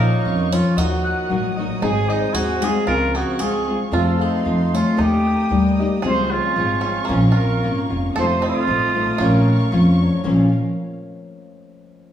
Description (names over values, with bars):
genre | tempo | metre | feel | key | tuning
mexican folk, mariachi | 114 BPM | 2/4 | straight | Bb minor | A4 = 439 Hz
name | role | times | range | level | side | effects
mellow trumpet | melody | 0.0-9.7 s | Db4 to C5 | -23 LUFS | right 3 dB | none
bluegrass banjo | second line | 0.0-9.7 s | Bb3 to A4 | -29 LUFS | right 6 dB | none
nylon-string guitar | accompaniment | 0.0-10.5 s | F2 to Ab4 | -24 LUFS | left 2 dB | none
muted studio violin section | sustained chords | 0.0-10.5 s | C4 to Eb6 | -31 LUFS | equal | none
concert harp | arpeggios | 0.0-10.5 s | F3 to Bb6 | -22 LUFS | left 2 dB | none
upright bass | bass | 0.0-10.5 s | F1 to F2 | -21 LUFS | right 1 dB | none
room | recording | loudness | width
wet recital hall reverb, RT60 1.5 s | small room ambience | -16 LUFS | side -10 dB against mid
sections
0.0-8.1 A section; 8.1-10.3 B section; 10.3-11.3 C section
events
none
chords
0.0 Bbm; 0.8 Ebm; 1.8 Ab; 2.9 Dbmaj7; 3.9 F; 5.0 Eb; 6.0 Dbmaj7; 7.1 Bbm; 8.1 F7; 9.2 Bbm